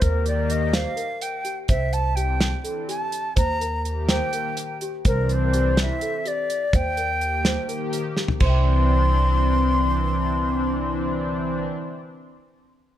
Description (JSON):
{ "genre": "progressive instrumental, band music in an uneven meter", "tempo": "250 BPM (eighths)", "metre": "7/8", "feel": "straight", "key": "C mixolydian", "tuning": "A4 = 435 Hz", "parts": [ { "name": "wooden flute", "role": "melody", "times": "0.0-11.6 s", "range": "Bb4 to C6", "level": "-26 LUFS", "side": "left 1 dB", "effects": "digital delay" }, { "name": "chorused pulse-width pad", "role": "accompaniment", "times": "0.0-11.6 s", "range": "Eb3 to G4", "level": "-27 LUFS", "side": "left 1 dB", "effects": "none" }, { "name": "celesta", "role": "arpeggios", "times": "0.0-11.8 s", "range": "G4 to C6", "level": "-32 LUFS", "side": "right 2 dB", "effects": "digital delay" }, { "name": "upright bass", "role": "bass", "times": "0.0-11.6 s", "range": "C2 to Eb2", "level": "-23 LUFS", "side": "equal", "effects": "none" }, { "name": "damped 70s drum kit", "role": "drums", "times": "0.0-8.5 s", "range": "crash cymbal, hi-hat, kick drum, snare drum, toms", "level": "-23 LUFS", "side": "equal", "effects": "none" } ], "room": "light reverb", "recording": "none", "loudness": "-20 LUFS", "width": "side -12 dB against mid", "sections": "0.0-8.4 A section; 8.4-11.8 B section", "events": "drum fill 8.2", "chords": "0.0 Eb; 1.7 Cadd9; 3.4 Eb; 5.0 Cadd9; 6.7 Eb; 8.4 Cadd9" }